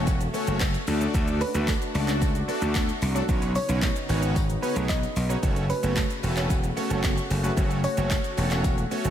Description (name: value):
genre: dance-pop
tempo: 112 BPM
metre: 4/4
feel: straight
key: F# minor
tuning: A4 = 441 Hz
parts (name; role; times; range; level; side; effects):
- big bright polysynth; accompaniment; 0.0-9.1 s; A3 to D5; -31 LUFS; equal; sidechain pumping
- sweeping resonant pad; sustained chords; 0.0-9.1 s; C#3 to F#4; -33 LUFS; left 1 dB; chorus, sidechain pumping
- twelve-string electric guitar; riff; 0.0-9.1 s; A3 to C#4; -36 LUFS; right 4 dB; analog chorus
- gritty slap bass; bass; 0.0-9.1 s; E1 to D2; -26 LUFS; equal; overdrive, sidechain pumping
- deep house drum kit; drums; 0.1-9.1 s; handclaps, hi-hat, kick drum, shaker; -28 LUFS; equal; none
- tambourine; percussion; 0.1-8.8 s; none; -47 LUFS; left 9 dB; none
- soft round pluck; melody; 1.4-8.0 s; B4 to D#5; -34 LUFS; equal; chorus, ping-pong delay
room: light reverb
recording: none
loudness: -23 LUFS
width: side -10 dB against mid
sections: 0.0-9.1 A section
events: none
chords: 0.0 F#m; 0.9 D; 3.3 Badd9; 5.4 F#m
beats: 0.07 0.61 | 1.14 1.68 2.21 2.75 | 3.29 3.82 4.36 4.89 | 5.43 5.96 6.50 7.04 | 7.57 8.11 8.64